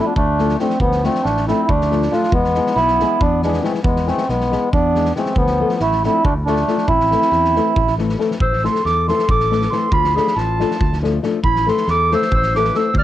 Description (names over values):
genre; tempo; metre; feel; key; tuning
balkan folk, Balkan wedding band; 276 BPM (eighths); 7/8; straight; A harmonic minor; A4 = 439 Hz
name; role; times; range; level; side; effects
mellow accordion; melody; 0.0-13.0 s; B3 to F6; -18 LUFS; right 2 dB; cassette tape
warm clarinet; second line; 0.0-13.0 s; F3 to D5; -25 LUFS; left 7 dB; cassette tape
flamenco guitar; accompaniment; 0.0-12.9 s; E3 to A4; -21 LUFS; left 6 dB; cassette tape
fingered electric bass; bass; 0.2-13.0 s; A1 to E2; -21 LUFS; equal; tube saturation
loose indie drum kit; percussion; 0.2-13.0 s; kick drum, snare drum; -23 LUFS; equal; cassette tape
room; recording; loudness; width
light reverb; home recording on cassette; -14 LUFS; side -13 dB against mid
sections
0.0-8.4 A section; 8.4-13.0 B section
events
none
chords
0.0 Dm; 2.3 E; 5.4 Dm; 6.9 Am; 9.9 Dm; 11.4 Am